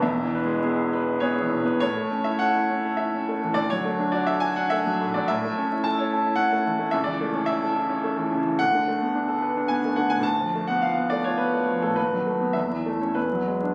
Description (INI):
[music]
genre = classical, romantic character piece for solo piano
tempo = 93-112 BPM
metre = 3/4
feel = rubato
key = A major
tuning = A4 = 439 Hz
[part]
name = bright grand piano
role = solo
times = 0.0-13.7 s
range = E1 to A5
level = -24 LUFS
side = equal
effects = none
[sound]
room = moderate recital hall reverb, RT60 1.3 s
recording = recorded on a phone in the room, studio reverb, vinyl crackle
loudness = -24 LUFS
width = mono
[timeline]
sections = 0.0-1.8 A section; 1.8-13.7 B section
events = none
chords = 0.0 E; 1.8 A; 3.6 D; 5.3 A; 6.9 A/C#; 8.6 Bm7/D; 10.3 Bm7b5/D; 12.0 B7/D#; 12.6 A/E; 13.2 E9